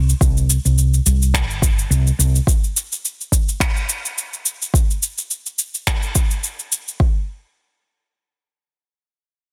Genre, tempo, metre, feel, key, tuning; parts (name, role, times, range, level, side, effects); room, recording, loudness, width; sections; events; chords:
sunset chillout; 106 BPM; 4/4; swing 55% on 16ths; A4 = 440 Hz
woody fretless electric bass; bass; 0.0-2.4 s; G1 to C2; -18 LUFS; equal; subtle chorus
electronic cabasa and finger snaps; drums; 0.1-7.0 s; -24 LUFS; equal; overdrive, soft clipping on snare
electronic kick drum; drums; 0.2-7.1 s; -20 LUFS; equal; overdrive
little or no reverb; dense, heavily limited modern master; -19 LUFS; mono
0.0-7.0 A section; 7.0-9.3 B section